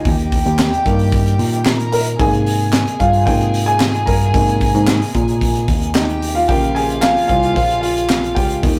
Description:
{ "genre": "piano-driven pop", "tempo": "112 BPM", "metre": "4/4", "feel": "straight", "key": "unclear", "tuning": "A4 = 439 Hz", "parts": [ { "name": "warm studio violin section", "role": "second line", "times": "0.0-8.8 s", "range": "Eb4 to Bb5", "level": "-27 LUFS", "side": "equal", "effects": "none" }, { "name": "warm concert grand piano", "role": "accompaniment", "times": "0.0-8.8 s", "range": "C3 to Bb5", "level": "-21 LUFS", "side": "equal", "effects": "none" }, { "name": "bell-like tine electric piano", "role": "bass", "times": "0.0-8.8 s", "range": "Bb1 to Bb2", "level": "-21 LUFS", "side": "equal", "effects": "none" }, { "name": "modern studio drum kit", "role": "drums", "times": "0.1-8.8 s", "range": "handclaps, hi-hat, kick drum, snare drum", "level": "-21 LUFS", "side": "equal", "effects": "none" }, { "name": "group handclap", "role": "percussion", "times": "0.6-8.2 s", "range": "none", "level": "-32 LUFS", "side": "equal", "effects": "none" } ], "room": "moderate studio ambience, RT60 0.5 s", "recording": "rough rehearsal-room recording, tube saturation", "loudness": "-16 LUFS", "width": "mono", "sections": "0.0-8.8 A section", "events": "grand piano solo 0.0-8.8", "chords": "0.1 Eb; 2.2 Abadd9; 6.5 Bbm" }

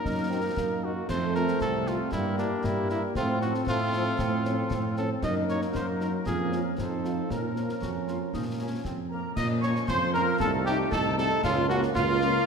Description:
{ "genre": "military-style march for wind band", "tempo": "116 BPM", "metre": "2/4", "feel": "straight", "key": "Bb minor", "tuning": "A4 = 440 Hz", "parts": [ { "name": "warm cornet", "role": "melody", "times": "0.0-12.5 s", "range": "D4 to Eb5", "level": "-32 LUFS", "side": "equal", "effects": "none" }, { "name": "clear euphonium", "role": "second line", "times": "0.0-12.5 s", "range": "G3 to F4", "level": "-34 LUFS", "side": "right 3 dB", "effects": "none" }, { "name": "dark woodwind section", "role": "second line", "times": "0.0-12.5 s", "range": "Bb3 to Eb5", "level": "-34 LUFS", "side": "left 2 dB", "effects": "none" }, { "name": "warm trombone section", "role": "sustained chords", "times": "0.0-12.5 s", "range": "F3 to F4", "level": "-36 LUFS", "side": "right 2 dB", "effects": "none" }, { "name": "mellow tuba", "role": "bass", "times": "0.1-12.4 s", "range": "C2 to Bb2", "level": "-30 LUFS", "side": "right 2 dB", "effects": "none" }, { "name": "concert snare drum, concert bass drum and clash cymbals", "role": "drums", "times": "0.1-12.3 s", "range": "none", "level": "-37 LUFS", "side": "left 2 dB", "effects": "none" }, { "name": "dark French horn section", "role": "accompaniment", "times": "0.3-12.3 s", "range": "F3 to Gb4", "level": "-38 LUFS", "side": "left 6 dB", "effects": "none" }, { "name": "small flute group", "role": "second line", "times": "9.1-12.5 s", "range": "F5 to Eb6", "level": "-32 LUFS", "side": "right 2 dB", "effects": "none" } ], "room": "wet concert hall reverb, RT60 1.8 s", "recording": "none", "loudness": "-25 LUFS", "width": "side -6 dB against mid", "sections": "0.0-9.4 A section; 9.4-12.5 A section", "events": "none", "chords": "0.0 Ebm/Gb; 1.1 F; 2.1 Edim/G; 3.2 F/A; 5.2 Ebm/Gb; 6.3 Bbm/F; 6.8 F7; 7.3 Bbm; 10.4 Adim/C; 11.4 Bbm/Db" }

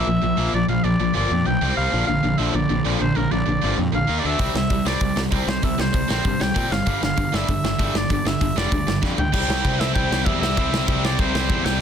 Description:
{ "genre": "punk rock", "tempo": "194 BPM", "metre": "4/4", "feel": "straight", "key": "C mixolydian", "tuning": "A4 = 440 Hz", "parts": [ { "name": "bright oboe", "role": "melody", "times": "0.0-11.8 s", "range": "Bb4 to G5", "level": "-26 LUFS", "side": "equal", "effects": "none" }, { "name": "overdriven electric guitar", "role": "riff", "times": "0.0-11.8 s", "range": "G2 to E4", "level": "-26 LUFS", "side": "left 13 dB", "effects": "none" }, { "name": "tight distorted guitar", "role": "riff", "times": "0.0-11.8 s", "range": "G2 to G4", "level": "-25 LUFS", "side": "right 14 dB", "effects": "distortion" }, { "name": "fuzz picked electric bass", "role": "bass", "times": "0.1-11.8 s", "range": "F1 to Bb2", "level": "-25 LUFS", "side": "equal", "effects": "overdrive" }, { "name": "big rock drum kit", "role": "drums", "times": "4.4-11.7 s", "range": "crash cymbal, hi-hat, kick drum, snare drum, toms", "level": "-24 LUFS", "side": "equal", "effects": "none" }, { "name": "heavy high-gain guitar", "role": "riff", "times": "9.3-11.8 s", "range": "C3 to C4", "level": "-29 LUFS", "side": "right 2 dB", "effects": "distortion" } ], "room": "little or no reverb", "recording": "dense, heavily limited modern master", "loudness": "-18 LUFS", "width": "side -8 dB against mid", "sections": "0.0-9.3 A section; 9.3-11.8 B section", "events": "drum fill 9.0-9.3", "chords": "0.0 Bb; 1.6 C5; 1.9 Bb; 4.1 Eb5; 4.2 D5; 4.4 C; 6.9 G5; 9.3 C" }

